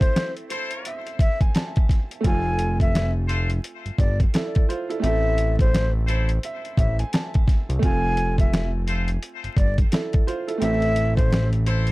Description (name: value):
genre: hip hop, boom-bap hip-hop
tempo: 86 BPM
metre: 4/4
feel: swing 62% on 16ths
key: A harmonic minor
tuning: A4 = 440 Hz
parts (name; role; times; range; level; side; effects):
- breathy mellow silver concert flute; melody; 0.0-11.5 s; C5 to G#5; -28 LUFS; left 2 dB; high-pass filter, low-pass filter, ping-pong delay
- clear upright piano; accompaniment; 0.0-11.9 s; A3 to A5; -30 LUFS; right 4 dB; cassette tape, high-pass filter, low-pass filter
- boom bap sampler-style drum kit; drums; 0.0-11.9 s; hi-hat, kick drum, snare drum; -20 LUFS; equal; none
- muted trumpet section; stabs; 0.5-11.9 s; E4 to C5; -32 LUFS; left 3 dB; high-pass filter, low-pass filter, ping-pong delay
- fat analog bass; bass; 2.2-11.9 s; F1 to C2; -22 LUFS; equal; none
room: little or no reverb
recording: vinyl crackle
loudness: -20 LUFS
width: side -20 dB against mid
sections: 0.0-11.9 A section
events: break 0.0-2.2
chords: 0.0 Am; 2.2 F; 5.0 Am; 7.8 F; 10.6 Am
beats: 0.15 0.85 1.55 | 2.24 2.94 3.64 4.34 | 5.03 5.73 6.43 7.13 | 7.83 8.52 9.22 9.92 | 10.62 11.31